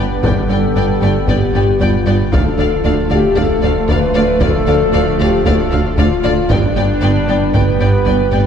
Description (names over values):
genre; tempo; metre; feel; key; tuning
cinematic, hybrid orchestral and electronic film score; 115 BPM; 4/4; straight; D dorian; A4 = 442 Hz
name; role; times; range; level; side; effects
warm studio violin section; melody; 0.0-8.4 s; F5 to G5; -26 LUFS; left 5 dB; none
warm symphonic violin section; second line; 0.0-8.4 s; D5; -24 LUFS; left 4 dB; none
warm symphonic viola section; accompaniment; 0.0-8.4 s; A3 to B3; -24 LUFS; equal; none
dark French horn section; sustained chords; 0.0-8.5 s; D4 to B4; -18 LUFS; left 2 dB; none
phased analog pad; sustained chords; 0.0-8.5 s; G3 to B4; -25 LUFS; equal; phaser, chorus
warm trombone section; sustained chords; 0.0-8.5 s; F3 to B3; -23 LUFS; right 2 dB; none
rubbery square bass; riff; 0.0-8.5 s; D2 to G3; -21 LUFS; right 1 dB; none
dark tuba; bass; 0.0-8.4 s; G1 to D2; -22 LUFS; right 2 dB; none
rich symphonic cello section; bass; 0.0-8.4 s; D2 to G2; -22 LUFS; right 3 dB; none
sub bass with octave; bass; 0.0-8.5 s; D1 to G1; -24 LUFS; equal; none
warm symphonic double bass section; bass; 0.0-8.4 s; G1 to D2; -22 LUFS; right 3 dB; none
taiko ensemble; drums; 0.2-8.3 s; none; -21 LUFS; left 1 dB; none
room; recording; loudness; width
wet scoring stage reverb, RT60 2.0 s; heard from further back in the room; -11 LUFS; side -8 dB against mid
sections
0.0-8.5 A section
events
none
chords
0.0 G; 2.3 Dm; 6.5 G